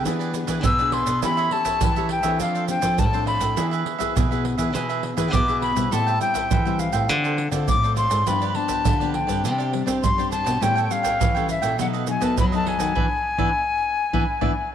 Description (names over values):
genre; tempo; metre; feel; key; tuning
samba and choro; 102 BPM; 4/4; straight; A minor; A4 = 440 Hz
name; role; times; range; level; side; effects
cavaquinho; accompaniment; 0.0-14.5 s; D4 to G5; -30 LUFS; right 9 dB; none
nylon-string guitar; accompaniment; 0.0-14.5 s; F#2 to A4; -30 LUFS; left 10 dB; none
nylon-string guitar; bass; 0.0-14.5 s; G2 to C4; -25 LUFS; equal; none
tube shaker, surdo and pandeiro; percussion; 0.1-14.6 s; none; -26 LUFS; right 3 dB; none
breathy silver concert flute; melody; 0.6-14.7 s; E5 to E6; -24 LUFS; left 3 dB; tape echo
room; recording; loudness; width
moderate plate reverb, RT60 3.0 s; 1960s-style stereo with parts hard left and right; -19 LUFS; side -9 dB against mid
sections
0.0-14.7 A section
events
band accent 13.0-14.7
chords
0.1 E7; 1.2 A7/E; 2.4 Dm7/F; 3.6 E; 5.9 Am7; 7.1 Dm7; 8.3 G7; 9.4 Csus2; 10.6 A7; 11.8 B7; 13.0 E7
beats
0.06 0.64 | 1.23 1.82 2.40 2.99 | 3.58 4.16 4.75 5.34 | 5.92 6.51 7.09 7.68 | 8.27 8.85 9.44 10.03 | 10.61 11.20 11.79 12.37 | 12.96 13.55 14.14 14.72